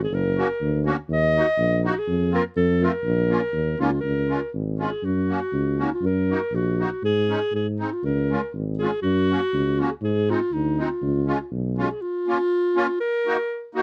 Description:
alpine folk, alpine dance band; 121 BPM; 2/4; swing 54% on 8ths; Bb minor, Db major from 4.0 s; A4 = 445 Hz
mellow clarinet; melody; 0.0-13.7 s; Eb4 to Eb5; -26 LUFS; equal
warm tuba; bass; 0.0-11.8 s; Gb1 to Ab2; -26 LUFS; equal
musette accordion; accompaniment; 0.4-13.8 s; Ab3 to Gb4; -27 LUFS; equal
little or no reverb; close, detailed microphones; -23 LUFS; mono
0.0-4.0 A section; 4.0-12.0 B section; 12.0-13.8 A section
0.1 Gb; 1.1 Ebm; 2.1 Fsus4; 2.6 F; 3.0 Bbm; 4.0 Db; 5.0 Gb; 6.0 Ebm/Gb; 7.0 Absus4; 7.5 Ab; 8.0 Db; 9.0 Gb; 10.0 Ab; 11.0 Db; 12.0 Bbm; 13.0 Ebm

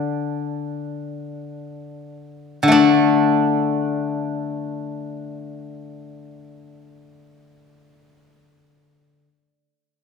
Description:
chinese traditional, Chinese solo plucked strings; free time; A4 = 440 Hz
steel-string zither; solo; 0.0-9.3 s; D3 to D4; -19 LUFS; left 3 dB
wet scoring stage reverb, RT60 1.4 s; recorded in a church or concert hall; -17 LUFS; side -5 dB against mid
0.0-2.7 A section; 2.7-9.2 B section
slowing down 0.0-2.7

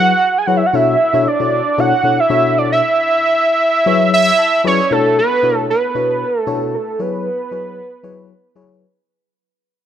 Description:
funk; 115 BPM; 4/4; straight; B dorian; A4 = 440 Hz
fat analog lead; melody; 0.0-8.6 s; A4 to G#5; -14 LUFS; right 2 dB; chorus
mellow FM electric piano; accompaniment; 0.0-8.9 s; B2 to A5; -19 LUFS; left 5 dB; chorus
light reverb, digital ambience; -12 LUFS; side -10 dB against mid
0.0-4.9 A section; 4.9-9.1 B section
FM electric piano fill 4.1-4.9; fade-out 4.9-9.1
0.0 F#7sus4; 0.7 Bm11; 2.8 F#7sus4; 4.9 Bm11; 7.0 F#7sus4

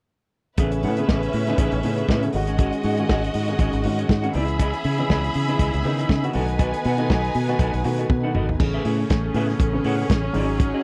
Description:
disco; 120 BPM; 4/4; swing 56% on 16ths; A4 = 442 Hz
clear studio string section; second line; 0.6-8.6 s; G#3 to B5; -30 LUFS; equal
dark baby grand piano; accompaniment; 0.6-10.8 s; C#3 to G#4; -30 LUFS; equal
mellow electric guitar; accompaniment; 0.6-10.8 s; B3 to F#5; -31 LUFS; equal
fingered electric bass; bass; 0.6-10.7 s; G#1 to C#3; -26 LUFS; equal
warm soul drum kit; drums; 0.6-10.7 s; crash cymbal, hi-hat, kick drum, snare drum, toms; -25 LUFS; equal
clear studio string section; sustained chords; 8.6-10.8 s; F#3 to G#4; -30 LUFS; equal
little or no reverb; dry, close 1970s-style studio recording; -22 LUFS; mono
0.6-8.6 A section; 8.6-10.8 B section
drum fill 8.1-8.6
0.6 Amaj9; 2.3 G#7sus4; 4.3 C#m9; 6.3 B7; 8.6 Amaj9

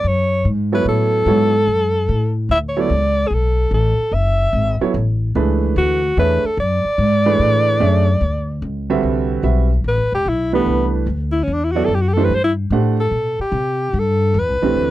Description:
modal jazz; 147 BPM; 4/4; swing 67% on 8ths; D lydian, C lydian from 9.0 s; A4 = 440 Hz
clear alto saxophone; melody; 0.0-14.9 s; B3 to E5; -18 LUFS; equal
upright bass; bass; 0.0-14.9 s; E1 to C3; -18 LUFS; left 1 dB
warm concert grand piano; accompaniment; 0.7-14.9 s; D3 to F#5; -19 LUFS; right 6 dB
little or no reverb; dry, close 1970s-style studio recording; -15 LUFS; side -15 dB against mid
0.0-9.0 A section; 9.0-14.9 B section
alto saxophone solo 9.0-14.9
0.0 Dmaj9; 9.0 Cmaj9

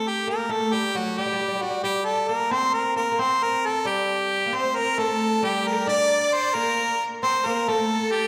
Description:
Persian modal ensemble; 89 BPM (dotted quarters); 6/8; straight; G avaz esfahan; A4 = 439 Hz
clear harmonica; melody; 0.0-8.3 s; F#4 to D5; -25 LUFS; equal
oud; second line; 0.0-8.3 s; F#3 to D4; -30 LUFS; equal
rich studio violin section; second line; 4.6-8.3 s; G4 to D5; -32 LUFS; equal
wet concert hall reverb, RT60 2.1 s; recorded in a church or concert hall; -23 LUFS; mono
0.0-8.3 A section

